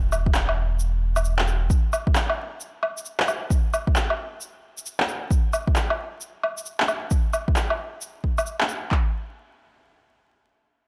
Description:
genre	future garage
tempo	133 BPM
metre	4/4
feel	swing 64% on 16ths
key	unclear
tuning	A4 = 440 Hz
part	warm sub bass	bass	0.0-1.7 s	E1	-26 LUFS	equal	tube saturation, sidechain pumping
part	electronic shaker, woodblock and handclaps	drums	0.1-8.8 s	none	-28 LUFS	equal	overdrive
part	deep house drum kit	drums	0.3-9.0 s	handclaps, kick drum	-24 LUFS	equal	overdrive
room	digital ambience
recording	dry, gritty hardware recording, vinyl crackle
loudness	-24 LUFS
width	mono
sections	0.0-8.9 A section; 8.9-10.9 B section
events	none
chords	none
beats	0.34 0.80 1.25 | 1.70 2.15 2.60 3.05 | 3.50 3.95 4.41 4.86 | 5.31 5.76 6.21 6.66 | 7.11 7.56 8.01 8.46 | 8.92

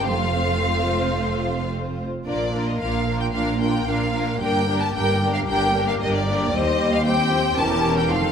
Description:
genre	quick classical-period movement for string orchestra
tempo	112 BPM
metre	4/4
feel	rubato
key	Bb major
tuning	A4 = 440 Hz
part	rich symphonic violin section	melody	0.0-8.3 s	D5 to A5	-24 LUFS	left 1 dB	none
part	warm symphonic violin section	second line	0.0-8.3 s	F4 to C5	-25 LUFS	left 3 dB	none
part	warm symphonic viola section	accompaniment	0.0-8.3 s	Eb3 to D4	-27 LUFS	right 1 dB	none
part	rich symphonic cello section	bass	0.0-8.3 s	Eb2 to Bb2	-26 LUFS	right 2 dB	none
part	rich symphonic double bass section	bass	0.0-8.3 s	E1 to Eb2	-28 LUFS	right 2 dB	none
room	wet recital hall reverb, RT60 1.4 s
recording	minimal, uncompressed stereo recording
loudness	-19 LUFS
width	side -7 dB against mid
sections	0.0-8.3 A section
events	none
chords	0.1 F; 2.3 Bb; 4.4 Gm; 6.5 Cm/Eb; 7.6 Edim7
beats	| 0.07 0.63 1.17 1.72 | 2.26 2.80 3.33 3.87 | 4.40 4.94 5.47 6.00 | 6.53 7.05 7.57 8.11

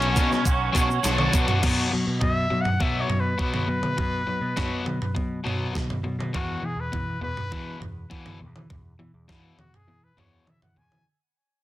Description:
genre	indie rock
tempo	102 BPM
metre	4/4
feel	straight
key	unclear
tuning	A4 = 440 Hz
part	clear trumpet	melody	0.0-11.1 s	C#4 to G#5	-30 LUFS	left 1 dB	plate reverb
part	crunchy overdriven guitar	riff	0.0-11.0 s	E2 to F#4	-29 LUFS	left 3 dB	none
part	raw garage guitar	riff	0.0-1.6 s	B2 to C#5	-28 LUFS	right 8 dB	overdrive, ensemble chorus, tape echo
part	growling picked electric bass	bass	0.0-11.0 s	B1 to E3	-30 LUFS	right 1 dB	overdrive
part	crisp 8-bit digital drum machine	drums	0.0-11.1 s	crash cymbal, hi-hat, kick drum, snare drum, toms	-27 LUFS	right 1 dB	none
part	egg shaker	percussion	0.2-1.5 s	none	-36 LUFS	right 6 dB	none
room	light reverb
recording	dense, heavily limited modern master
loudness	-22 LUFS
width	side -15 dB against mid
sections	0.0-1.6 A section; 1.6-11.1 B section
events	drum fill 1.0-1.6; fade-out 1.6-11.1; trumpet solo 1.6-11.1; break 9.9-11.1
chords	0.0 Bmadd9; 1.6 B5; 6.3 E5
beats	0.45 1.04 | 1.63 2.22 2.80 3.39 | 3.98 4.57 5.16 5.75 | 6.34 6.93 7.52 8.11 | 8.70 9.29 9.88 10.47

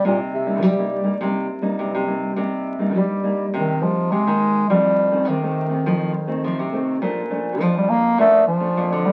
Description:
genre	samba and choro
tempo	103 BPM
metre	4/4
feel	straight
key	C minor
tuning	A4 = 443 Hz
part	warm bass clarinet	melody	0.0-9.1 s	Bb2 to Bb3	-21 LUFS	equal	none
part	nylon-string guitar	accompaniment	0.0-9.1 s	F2 to Eb4	-27 LUFS	equal	none
part	nylon-string guitar	bass	0.0-9.1 s	Bb2 to G3	-26 LUFS	equal	none
room	wet studio ambience, RT60 0.5 s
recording	very old 78 rpm record, vinyl crackle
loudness	-20 LUFS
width	mono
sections	0.0-2.4 A section; 2.4-9.1 A section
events	none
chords	0.0 Cm7; 4.7 F7; 7.0 Bbmaj7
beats	| 0.05 0.63 1.21 1.79 | 2.37 2.96 3.54 4.12 | 4.70 5.28 5.86 6.44 | 7.02 7.61 8.19 8.77

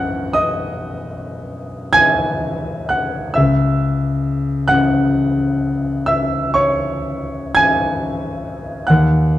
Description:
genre	classical, romantic nocturne for solo piano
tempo	36-47 BPM (dotted quarters)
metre	12/8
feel	rubato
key	unclear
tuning	A4 = 440 Hz
part	warm grand piano	solo	0.0-9.4 s	B1 to A#6	-15 LUFS	equal	none
room	moderate recital hall reverb, RT60 1.5 s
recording	dark, warm production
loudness	-15 LUFS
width	side -14 dB against mid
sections	0.0-9.4 A section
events	none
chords	0.0 B; 3.4 F#5/C#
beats	0.36 1.96 | 3.36 4.70 6.08 7.57 | 8.89

